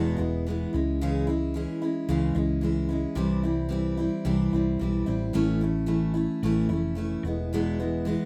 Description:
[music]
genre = folk rock and heartland rock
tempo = 111 BPM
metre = 4/4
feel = straight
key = unclear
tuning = A4 = 439 Hz
[part]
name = picked steel-string acoustic guitar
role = accompaniment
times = 0.0-8.3 s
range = E2 to E4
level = -28 LUFS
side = equal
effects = none
[part]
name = hollow-body short-scale fingered electric bass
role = bass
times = 0.0-8.2 s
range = E1 to C#2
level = -33 LUFS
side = equal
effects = none
[sound]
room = wet small room reverb, RT60 0.6 s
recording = rough home demo mix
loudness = -27 LUFS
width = mono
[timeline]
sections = 0.0-8.3 A section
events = none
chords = 0.0 E; 0.7 C#m; 3.2 C; 5.3 A; 7.2 E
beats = 0.46 | 1.00 1.55 2.09 2.63 | 3.17 3.71 4.26 4.80 | 5.34 5.88 6.43 6.97 | 7.51 8.05

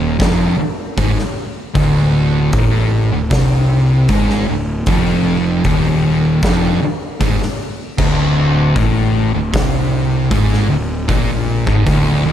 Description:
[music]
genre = stoner and doom metal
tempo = 77 BPM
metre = 4/4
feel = straight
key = D phrygian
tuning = A4 = 439 Hz
[part]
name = thick fuzz guitar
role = riff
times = 0.0-12.3 s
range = D2 to C3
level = -17 LUFS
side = left 6 dB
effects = distortion
[part]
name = thick fuzz guitar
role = riff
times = 0.0-12.3 s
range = D2 to C3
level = -17 LUFS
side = right 6 dB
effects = distortion
[part]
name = fuzz picked electric bass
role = bass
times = 0.0-12.3 s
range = D1 to C2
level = -21 LUFS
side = equal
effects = overdrive
[part]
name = oversized low-tuned drum kit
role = drums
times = 0.2-12.0 s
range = crash cymbal, hi-hat, kick drum, snare drum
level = -19 LUFS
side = equal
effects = none
[sound]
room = light reverb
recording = dark, warm production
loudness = -13 LUFS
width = side -10 dB against mid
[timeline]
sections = 0.0-12.3 A section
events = none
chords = 0.0 Dm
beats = 0.20 0.98 | 1.76 2.54 3.31 4.09 | 4.87 5.65 6.42 7.20 | 7.98 8.76 9.53 10.31 | 11.09 11.87

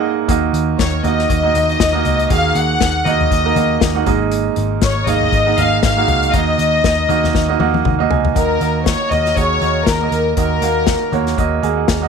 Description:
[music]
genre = piano-driven pop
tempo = 119 BPM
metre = 4/4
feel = swing 56% on 16ths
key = unclear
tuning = A4 = 440 Hz
[part]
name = warm studio violin section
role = melody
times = 0.0-11.3 s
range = Bb4 to Gb5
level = -18 LUFS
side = left 3 dB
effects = none
[part]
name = warm grand piano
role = accompaniment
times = 0.0-12.1 s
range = Ab2 to Ab5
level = -18 LUFS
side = right 12 dB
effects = none
[part]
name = vintage muted picked electric bass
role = bass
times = 0.3-12.1 s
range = Ab1 to Eb2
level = -20 LUFS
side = left 2 dB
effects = none
[part]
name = unplugged drum kit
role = drums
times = 0.3-12.0 s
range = hi-hat, kick drum, snare drum, toms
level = -19 LUFS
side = left 5 dB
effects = none
[sound]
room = light reverb, studio ambience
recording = 1960s-style stereo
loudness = -13 LUFS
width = side -6 dB against mid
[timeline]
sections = 0.0-8.4 A section; 8.4-12.1 B section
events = drum fill 7.3-8.4; grand piano fill 7.3-8.4, 11.4-12.1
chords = 0.3 Ebm; 4.1 Absus2; 6.3 Ebm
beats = | 0.29 0.79 1.29 1.80 | 2.30 2.81 3.31 3.82 | 4.32 4.83 5.33 5.83 | 6.34 6.84 7.35 7.85 | 8.36 8.86 9.37 9.87 | 10.37 10.88 11.38 11.89

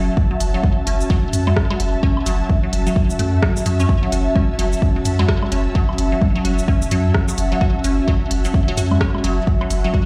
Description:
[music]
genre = minimal techno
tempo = 129 BPM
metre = 4/4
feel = swing 60% on 16ths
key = F# minor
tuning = A4 = 437 Hz
[part]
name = punchy sub bass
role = bass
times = 0.0-9.9 s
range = F#1 to F#2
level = -22 LUFS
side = equal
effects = sidechain pumping
[part]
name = ethereal airy pad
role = texture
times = 0.0-10.1 s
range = C#4 to A5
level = -26 LUFS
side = equal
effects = ensemble chorus, built-in reverb, sidechain pumping
[part]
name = electronic kick drum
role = drums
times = 0.2-10.0 s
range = none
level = -20 LUFS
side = equal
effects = overdrive
[part]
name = resonant blip pluck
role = riff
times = 0.3-10.0 s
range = F#3 to F#4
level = -28 LUFS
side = equal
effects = phaser, sidechain pumping, digital delay
[part]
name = techno drum kit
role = drums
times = 0.4-9.8 s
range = hi-hat, rim click, shaker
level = -29 LUFS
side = equal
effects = overdrive
[part]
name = congas and woodblock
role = percussion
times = 0.6-10.0 s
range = none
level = -28 LUFS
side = equal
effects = overdrive, digital delay
[sound]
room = moderate studio reverb, RT60 0.6 s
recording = played on a big sound system in a bare room, large studio reverb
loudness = -18 LUFS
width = mono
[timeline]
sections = 0.0-10.1 A section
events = none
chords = 0.0 F#m7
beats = | 0.17 0.64 1.10 1.57 | 2.03 2.50 2.96 3.43 | 3.89 4.36 4.82 5.29 | 5.75 6.22 6.68 7.15 | 7.61 8.08 8.54 9.01 | 9.47 9.94

